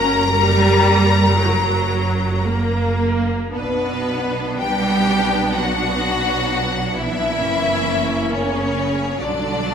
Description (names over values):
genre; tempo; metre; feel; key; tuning
classical, slow romantic movement for string orchestra; 54-69 BPM; 4/4; rubato; B minor; A4 = 442 Hz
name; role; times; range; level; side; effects
clear studio violin section; melody; 0.0-9.7 s; B4 to A#5; -22 LUFS; left 3 dB; none
rich studio violin section; second line; 0.0-9.7 s; B3 to A#4; -24 LUFS; left 3 dB; none
rich studio viola section; accompaniment; 0.0-9.7 s; F#3 to F#4; -22 LUFS; right 1 dB; none
rich studio cello section; bass; 0.0-9.7 s; F#2 to G3; -23 LUFS; right 3 dB; none
rich studio double bass section; bass; 0.0-9.7 s; F#1 to B1; -25 LUFS; right 2 dB; none
room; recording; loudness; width
wet recital hall reverb, RT60 1.5 s; recorded in a church or concert hall; -16 LUFS; side -7 dB against mid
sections
0.0-3.5 A section; 3.5-9.7 B section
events
none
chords
0.0 F#; 3.5 Bm; 7.4 F#7; 9.2 Bm